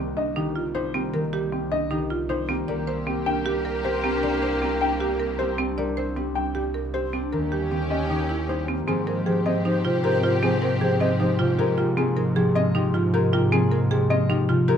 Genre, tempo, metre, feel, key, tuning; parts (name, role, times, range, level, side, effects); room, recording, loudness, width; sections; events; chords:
classical, minimalist pattern music; 155 BPM; 4/4; straight; Ab major from 8.9 s; A4 = 439 Hz
dark baby grand piano; melody; 0.0-14.8 s; G4 to G5; -28 LUFS; left 8 dB
concert harp; accompaniment; 0.0-14.8 s; C3 to D4; -26 LUFS; left 1 dB
buzzing marimba with hard mallets; arpeggios; 0.0-14.8 s; C4 to D5; -27 LUFS; right 5 dB
bright symphonic double bass section; bass; 0.0-14.8 s; C2 to Ab2; -30 LUFS; right 2 dB
hollow alto flute; second line; 2.7-11.7 s; G4 to C5; -30 LUFS; right 1 dB
clear symphonic violin section; sustained chords; 2.7-11.7 s; Bb3 to G4; -32 LUFS; left 3 dB
light reverb; dark, warm production; -21 LUFS; side -8 dB against mid
0.0-8.9 A section; 8.9-14.8 B section
0.0 Cm9; 2.7 Gm/C; 7.3 Eb7b9; 8.9 Abmaj9